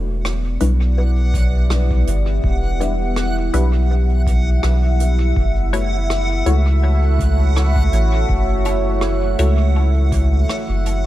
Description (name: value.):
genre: ambient dub.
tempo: 82 BPM.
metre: 4/4.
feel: swing 55% on 16ths.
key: E dorian.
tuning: A4 = 440 Hz.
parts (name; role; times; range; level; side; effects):
deep dark ambient pad; sustained chords; 0.0-11.1 s; A3 to E5; -23 LUFS; equal; chorus, built-in reverb.
filtered dub chord stab; stabs; 0.0-9.6 s; G3 to C#5; -27 LUFS; left 4 dB; phaser, dub echo.
soft dub sub bass; bass; 0.0-11.1 s; E1 to C#2; -16 LUFS; equal; none.
backwards swelling texture; texture; 0.9-11.1 s; F#5; -30 LUFS; left 1 dB; built-in reverb.
soft brush drum kit; drums; 0.2-11.0 s; hi-hat, rim click; -30 LUFS; right 1 dB; dub echo.
electronic kick drum; drums; 1.3-10.3 s; none; -22 LUFS; equal; none.
room: little or no reverb.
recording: none.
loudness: -15 LUFS.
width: side -14 dB against mid.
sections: 0.0-11.1 A section.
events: none.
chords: 0.0 Em7; 5.4 F#m7.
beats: 0.24 0.97 1.71 | 2.44 3.17 3.90 4.63 | 5.37 6.10 6.83 7.56 | 8.29 9.02 9.76 10.49.